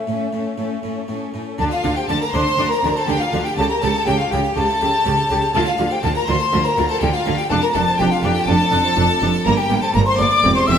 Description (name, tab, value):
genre	classical, baroque-style concerto movement with solo episodes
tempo	122 BPM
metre	4/4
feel	straight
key	D minor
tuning	A4 = 445 Hz
part	clear chamber violin section	melody	0.0-10.8 s	A4 to E6	-24 LUFS	left 3 dB	none
part	mellow hollow silver concert flute	melody	0.0-10.8 s	E5 to E6	-21 LUFS	left 1 dB	none
part	clear chamber violin section	second line	0.0-10.8 s	C#4 to E5	-24 LUFS	left 2 dB	none
part	harpsichord	accompaniment	0.0-10.8 s	E2 to D5	-28 LUFS	right 1 dB	none
part	rich chamber viola section	accompaniment	0.0-10.8 s	A3 to G4	-25 LUFS	equal	none
part	rich studio cello section	bass	0.1-10.8 s	E2 to D3	-24 LUFS	right 2 dB	none
part	clear chamber double bass section	bass	1.6-10.8 s	E1 to D2	-24 LUFS	right 3 dB	none
room	wet recital hall reverb, RT60 1.7 s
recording	none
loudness	-16 LUFS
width	side -8 dB against mid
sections	0.0-1.6 A section; 1.6-10.8 B section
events	none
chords	0.0 A; 1.6 D5; 3.6 A7/C#; 5.5 Dm; 7.5 Dm/F; 9.5 Gm